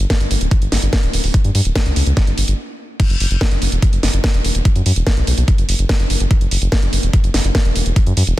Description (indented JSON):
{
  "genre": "psychedelic trance",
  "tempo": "145 BPM",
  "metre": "4/4",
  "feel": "straight",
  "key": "unclear",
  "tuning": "A4 = 441 Hz",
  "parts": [
    { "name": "round analog bass", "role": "bass", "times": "0.0-8.3 s", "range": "D1 to G2", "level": "-16 LUFS", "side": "equal", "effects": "tube saturation" },
    { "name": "techno drum kit", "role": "drums", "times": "0.0-8.4 s", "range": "crash cymbal, hi-hat, snare drum", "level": "-20 LUFS", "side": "equal", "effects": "none" },
    { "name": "electronic kick drum", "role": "drums", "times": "0.1-8.0 s", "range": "none", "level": "-15 LUFS", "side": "equal", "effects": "none" }
  ],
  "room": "little or no reverb",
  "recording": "dense, heavily limited modern master",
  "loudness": "-14 LUFS",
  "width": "side -16 dB against mid",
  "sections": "0.0-3.0 A section; 3.0-8.4 B section",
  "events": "stop 2.6-3.0; drop 3.0-8.4",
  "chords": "none"
}